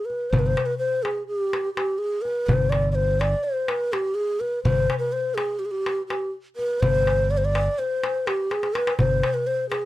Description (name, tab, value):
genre	Turkish makam ensemble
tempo	249 BPM (eighths)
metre	9/8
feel	straight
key	G makam hicaz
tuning	A4 = 437 Hz
part	breathy mellow low ney	melody	0.0-9.9 s	G4 to D5	-23 LUFS	equal	none
part	darbuka	percussion	0.1-9.8 s	none	-26 LUFS	left 2 dB	none
part	modern bright fingered electric bass	bass	0.3-9.2 s	G1	-24 LUFS	right 1 dB	none
room	little or no reverb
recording	dry, close 1970s-style studio recording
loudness	-21 LUFS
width	side -16 dB against mid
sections	0.3-9.9 A section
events	drum fill 8.5-9.0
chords	none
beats	0.08 | 0.32 0.56 0.80 1.04 1.28 1.52 1.76 2.01 2.25 | 2.49 2.73 2.97 3.21 3.45 3.69 3.93 4.17 4.41 | 4.66 4.90 5.14 5.38 5.62 5.86 6.10 6.34 6.58 | 6.82 7.07 7.31 7.55 7.79 8.03 8.27 8.51 8.75 | 8.99 9.23 9.48 9.72